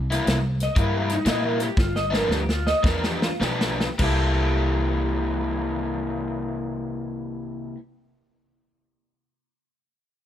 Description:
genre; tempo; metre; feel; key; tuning
electric blues shuffle; 99-124 BPM; 4/4; swing 66% on 8ths; C mixolydian; A4 = 440 Hz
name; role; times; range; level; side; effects
upright bass; bass; 0.0-7.7 s; G1 to Bb2; -26 LUFS; equal; none
overdriven electric guitar; riff; 0.1-7.8 s; G2 to A4; -27 LUFS; left 2 dB; none
natural country drum kit; drums; 0.1-4.2 s; crash cymbal, hi-hat, kick drum, snare drum; -26 LUFS; equal; none
electric guitar through a small old amp; melody; 0.6-7.7 s; Eb4 to Eb5; -28 LUFS; equal; wide subtle chorus
room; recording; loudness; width
little or no reverb; none; -21 LUFS; side -10 dB against mid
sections
0.0-4.0 A section; 4.0-8.8 B section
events
slowing down 0.0-4.0; drum fill 1.8-4.0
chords
0.0 C7; 1.8 G7; 4.0 C6

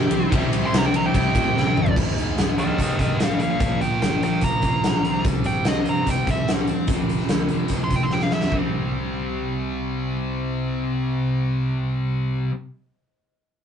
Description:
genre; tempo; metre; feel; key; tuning
hard rock; 146 BPM; 4/4; straight; unclear; A4 = 436 Hz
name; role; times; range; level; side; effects
nasal lead guitar with a parked wah; melody; 0.0-8.5 s; G4 to C6; -25 LUFS; right 1 dB; overdrive
tonewheel organ; sustained chords; 0.0-1.9 s; C4 to D5; -36 LUFS; right 2 dB; none
crunchy overdriven guitar; riff; 0.0-12.5 s; F2 to C4; -28 LUFS; right 2 dB; none
crunchy overdriven guitar; riff; 0.0-2.0 s; C3 to E4; -30 LUFS; left 1 dB; none
scooped high-gain guitar; riff; 0.0-12.5 s; F2 to C4; -28 LUFS; left 2 dB; distortion
modern bright picked electric bass; bass; 0.0-12.5 s; F1 to Bb2; -31 LUFS; equal; none
huge arena drum kit; drums; 0.1-8.6 s; crash cymbal, hi-hat, kick drum, ride cymbal, snare drum, toms; -21 LUFS; equal; none
room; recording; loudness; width
moderate small room ambience, RT60 0.5 s; rough rehearsal-room recording, nothing above 10.4 kHz; -20 LUFS; side -8 dB against mid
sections
0.0-2.0 A section; 2.0-8.5 B section; 8.5-11.8 C section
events
lead electric guitar solo 0.0-2.0, 2.0-8.5; drum fill 1.6-2.0, 8.1-8.5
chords
0.0 C; 2.0 Ab5; 3.4 Bb; 5.0 C5; 6.9 F5; 8.5 C5

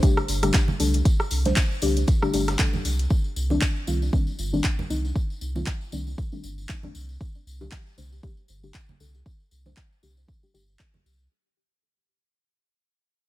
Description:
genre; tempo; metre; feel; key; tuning
deep house; 117 BPM; 4/4; swing 56% on 16ths; unclear; A4 = 440 Hz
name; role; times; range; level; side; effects
deep mellow chord stab; stabs; 0.0-11.1 s; D3 to C5; -28 LUFS; left 2 dB; chorus, sidechain pumping, tape echo
crunchy breakbeat drum kit; drums; 0.0-3.1 s; hi-hat, snare drum, tambourine; -41 LUFS; equal; none
deep house drum kit; drums; 0.0-10.9 s; handclaps, hi-hat, rim click; -29 LUFS; equal; none
electronic kick drum; drums; 0.0-10.9 s; none; -23 LUFS; equal; none
congas; percussion; 0.0-11.0 s; none; -35 LUFS; right 3 dB; none
tambourine; percussion; 0.0-11.3 s; none; -39 LUFS; left 3 dB; none
warm sub bass; bass; 0.3-11.3 s; G1 to C2; -26 LUFS; equal; sidechain pumping
room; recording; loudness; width
small room ambience; none; -22 LUFS; side -16 dB against mid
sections
0.0-11.3 A section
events
fade-out 0.0-11.3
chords
0.0 Gsus2; 3.1 Cm69; 7.2 Gsus2

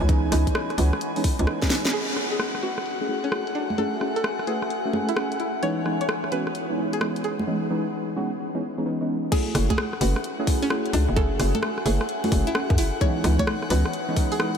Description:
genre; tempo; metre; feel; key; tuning
UK garage, two-step garage; 130 BPM; 4/4; swing 66% on 16ths; F# minor; A4 = 445 Hz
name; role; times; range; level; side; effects
airy breathy pad; sustained chords; 0.0-14.6 s; F#5 to G#5; -36 LUFS; left 3 dB; chorus, sidechain pumping
deep mellow chord stab; stabs; 0.0-14.6 s; E3 to B4; -27 LUFS; right 1 dB; chorus, ping-pong delay
hollow knocking FM bass; bass; 0.0-1.5, 9.5-13.8 s; F#1 to F#2; -22 LUFS; equal; sidechain pumping
ethereal airy pad; texture; 0.0-14.6 s; E4 to D#6; -34 LUFS; equal; ensemble chorus, built-in reverb, sidechain pumping
electronic kick drum; drums; 0.1-1.7, 9.3-14.3 s; none; -23 LUFS; equal; studio reverb
garage drum kit; drums; 0.1-14.6 s; congas, crash cymbal, hi-hat, rim click, snare drum; -28 LUFS; equal; low-pass filter on hats, studio reverb, low-pass filter on snare, low-pass filter on cymbals, low-pass filter on perc
string-like resonator pluck; melody; 1.9-14.5 s; C#4 to C#5; -31 LUFS; equal; chorus, diffuse ambient delay
room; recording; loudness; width
moderate huge ambient reverb, RT60 5.0 s; dreamy mix soaked in reverb; -22 LUFS; side -7 dB against mid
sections
0.0-1.9 A section; 1.9-9.3 B section; 9.3-14.6 C section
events
drum fill 1.6-1.9; band accent 1.8; drop 9.3-14.6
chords
0.0 C#m9; 1.9 F#m9; 5.6 C#m9; 9.3 F#m9; 13.0 C#m9

